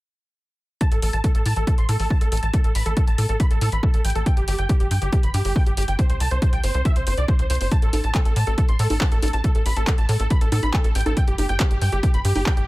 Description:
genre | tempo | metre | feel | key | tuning
uplifting trance | 139 BPM | 4/4 | straight | unclear | A4 = 440 Hz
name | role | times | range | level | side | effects
dense compressed supersaw | melody | 0.8-12.6 s | G4 to C6 | -27 LUFS | equal | sidechain pumping, low-pass filter
electronic kick drum | drums | 0.8-12.5 s | none | -20 LUFS | equal | none
punchy analog drum machine | drums | 0.8-12.7 s | congas, handclaps, hi-hat | -29 LUFS | equal | none
tight sequencer bass | bass | 0.9-12.7 s | G1 to A2 | -22 LUFS | equal | sidechain pumping
room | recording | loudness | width
little or no reverb | none | -18 LUFS | side -19 dB against mid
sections
0.8-12.7 A section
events
none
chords
0.8 N.C.; 6.0 C5; 7.7 N.C.

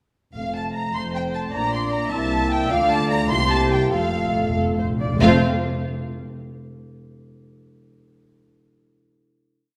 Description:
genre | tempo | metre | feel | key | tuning
quick classical-period movement for symphony orchestra | 93-104 BPM (dotted quarters) | 6/8 | rubato | F major | A4 = 436 Hz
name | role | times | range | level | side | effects
rich studio violin section | second line | 0.3-5.4 s | F4 to C6 | -33 LUFS | equal | none
warm studio cello section | bass | 0.3-5.4 s | F2 to D3 | -31 LUFS | equal | none
warm studio double bass section | bass | 0.3-5.4 s | F1 to D2 | -31 LUFS | equal | none
warm studio violin section | melody | 0.4-5.4 s | F5 to C6 | -28 LUFS | equal | none
flute section | second line | 0.4-5.4 s | C5 to C6 | -31 LUFS | equal | none
mellow French horn section | sustained chords | 0.4-5.4 s | A3 to F4 | -29 LUFS | equal | none
timpani | percussion | 0.4-0.9, 3.9-5.4 s | F2 | -29 LUFS | equal | none
rich studio viola section | accompaniment | 1.0-5.4 s | A3 to E5 | -28 LUFS | equal | none
room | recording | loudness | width
wet concert hall reverb, RT60 2.0 s | none | -21 LUFS | mono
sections
0.3-5.2 A section; 5.2-6.4 final chord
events
timpani fill 3.9-5.2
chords
0.3 F; 1.5 Bb; 2.1 C7; 2.7 Dm; 3.3 C7; 3.9 F

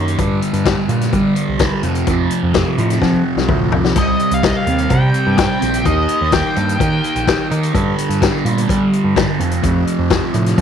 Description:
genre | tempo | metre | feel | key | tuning
psychedelic rock | 127 BPM | 4/4 | straight | G minor | A4 = 440 Hz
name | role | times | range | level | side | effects
thick fuzz guitar | riff | 0.0-10.6 s | F2 to Eb4 | -18 LUFS | right 2 dB | distortion, phaser
growling picked electric bass | bass | 0.0-10.6 s | Bb1 to G3 | -18 LUFS | right 1 dB | overdrive
vintage drum kit | drums | 0.1-10.6 s | hi-hat, kick drum, snare drum, splash cymbal, toms | -19 LUFS | left 4 dB | none
octave-fuzz lead guitar | melody | 4.0-7.5 s | Eb5 to G5 | -20 LUFS | left 2 dB | distortion, slapback echo
room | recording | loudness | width
light reverb, small room ambience | 1960s-style stereo | -13 LUFS | side -8 dB against mid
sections
0.0-10.6 A section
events
drum fill 3.0-4.0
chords
0.2 Gm; 1.8 F5; 4.0 Cm; 5.9 Eb; 7.7 G5; 9.4 F

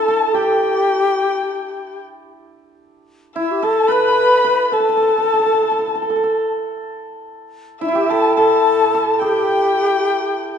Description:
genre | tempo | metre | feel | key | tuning
chinese traditional, Chinese chamber ensemble | 109 BPM | 4/4 | rubato | unclear | A4 = 440 Hz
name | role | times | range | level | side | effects
bright xiao | melody | 0.0-10.6 s | D4 to B4 | -18 LUFS | left 2 dB | none
dark erhu | second line | 0.0-10.6 s | E5 to B5 | -20 LUFS | left 4 dB | none
hammered dulcimer | second line | 0.0-10.6 s | D4 to B4 | -20 LUFS | right 4 dB | none
room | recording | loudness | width
wet recital hall reverb, RT60 1.7 s | dark, warm production, nothing above 10.7 kHz | -14 LUFS | side -8 dB against mid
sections
0.0-10.6 A section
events
none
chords
none

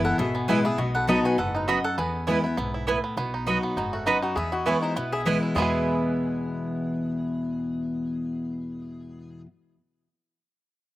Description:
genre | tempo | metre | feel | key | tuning
bluegrass | 201 BPM | 4/4 | swing 54% on 8ths | E major | A4 = 440 Hz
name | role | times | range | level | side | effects
bluegrass banjo | melody | 0.0-9.4 s | G#3 to A4 | -32 LUFS | right 4 dB | slapback echo
mandolin | melody | 0.0-9.4 s | F#4 to A5 | -32 LUFS | left 1 dB | slapback echo
lap resonator guitar | second line | 0.0-9.4 s | A3 to D#5 | -31 LUFS | left 2 dB | slapback echo
picked steel-string acoustic guitar | accompaniment | 0.0-9.5 s | E2 to F#4 | -27 LUFS | left 2 dB | none
upright bass | bass | 0.0-9.4 s | F#1 to E2 | -35 LUFS | equal | none
mandolin | stabs | 0.5-9.5 s | B3 to B5 | -28 LUFS | right 4 dB | none
room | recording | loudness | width
little or no reverb | recorded outdoors, with no room sound | -23 LUFS | side -15 dB against mid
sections
0.0-3.2 A section; 3.2-5.6 B section; 5.6-8.0 C section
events
none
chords
0.0 E; 0.8 B; 2.0 E; 3.2 B; 4.4 E

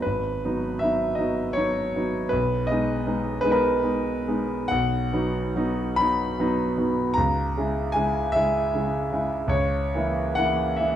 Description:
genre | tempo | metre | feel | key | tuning
classical, romantic nocturne for solo piano | 45-55 BPM (dotted quarters) | 12/8 | rubato | unclear | A4 = 440 Hz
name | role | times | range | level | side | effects
clear concert grand piano | solo | 0.0-11.0 s | G#1 to B5 | -22 LUFS | equal | none
room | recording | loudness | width
wet recital hall reverb, RT60 1.5 s | dark, warm production | -22 LUFS | side -10 dB against mid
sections
0.0-11.0 A section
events
none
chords
0.0 G#m7; 2.3 G#m/B; 4.7 B; 7.2 C#m; 9.5 A#dim/C#

